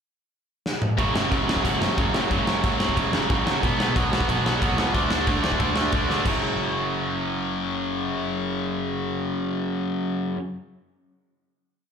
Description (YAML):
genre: punk rock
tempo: 182 BPM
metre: 4/4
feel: straight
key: unclear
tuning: A4 = 438 Hz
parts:
  - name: big rock drum kit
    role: drums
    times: 0.7-6.3 s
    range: crash cymbal, kick drum, snare drum, toms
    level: -25 LUFS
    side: equal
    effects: none
  - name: overdriven electric guitar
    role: riff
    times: 1.0-10.4 s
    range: F#2 to D4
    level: -26 LUFS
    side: right 9 dB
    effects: slapback echo
  - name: tight distorted guitar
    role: riff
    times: 1.0-10.4 s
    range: F#2 to D4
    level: -27 LUFS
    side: left 11 dB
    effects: distortion, slapback echo
  - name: overdriven picked electric bass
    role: bass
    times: 1.0-10.3 s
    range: F#1 to D2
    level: -31 LUFS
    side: equal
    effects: none
room: studio reverb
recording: live gig heard through the venue's PA, club reverb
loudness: -21 LUFS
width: side -7 dB against mid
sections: 0.0-1.0 pickup bar; 1.0-6.3 riff; 6.3-8.9 final chord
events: drum fill 0.6-1.0, 6.1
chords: 0.0 N.C.; 1.0 F#5; 3.6 B5; 4.9 D5; 6.3 F#5